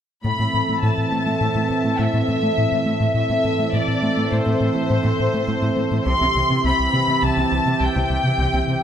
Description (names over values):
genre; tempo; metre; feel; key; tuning
cinematic; 103 BPM; 5/4; straight; A minor; A4 = 440 Hz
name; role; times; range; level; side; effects
rich symphonic violin section; melody; 0.2-8.8 s; C5 to C6; -22 LUFS; left 2 dB; none
warm analog pad; sustained chords; 0.2-8.8 s; E3 to E5; -23 LUFS; right 2 dB; chorus
round analog bass; riff; 0.2-8.8 s; C2 to A3; -23 LUFS; left 2 dB; none
warm symphonic cello section; bass; 0.2-8.7 s; A2 to C3; -26 LUFS; right 3 dB; none
room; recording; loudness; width
moderate scoring stage reverb, RT60 1.8 s; none; -17 LUFS; side -9 dB against mid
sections
0.2-8.8 A section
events
none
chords
0.2 Am; 6.1 C